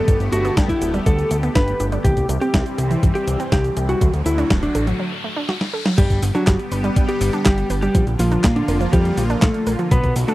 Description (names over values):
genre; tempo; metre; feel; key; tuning
italo disco; 122 BPM; 4/4; straight; G major; A4 = 441 Hz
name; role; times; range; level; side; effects
lightly driven lead guitar; melody; 0.0-10.3 s; D3 to B4; -23 LUFS; equal; vintage 12-bit sampler grit, tape echo
lush unison pad; sustained chords; 0.0-10.3 s; D3 to G4; -27 LUFS; equal; chorus, phaser
wide unison pluck; arpeggios; 0.0-10.3 s; E3 to B4; -25 LUFS; right 2 dB; tape echo
fat analog bass; bass; 0.1-10.3 s; D1 to Bb2; -21 LUFS; equal; none
clean 12-bit digital drum machine; drums; 0.1-10.3 s; cabasa, crash cymbal, handclaps, hi-hat, snare drum; -24 LUFS; equal; none
electronic kick drum; drums; 0.1-10.1 s; none; -18 LUFS; equal; none
riser; sound effects; 3.2-6.0 s; none; -32 LUFS; left 2 dB; none
room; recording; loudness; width
little or no reverb; dry, close 1970s-style studio recording; -16 LUFS; side -17 dB against mid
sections
0.0-6.0 A section; 6.0-10.3 B section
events
riser 3.2-6.0; break 5.0-6.0; drum fill 5.5-6.0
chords
0.0 Gadd9; 2.0 C; 4.0 D; 6.0 G; 7.9 Bb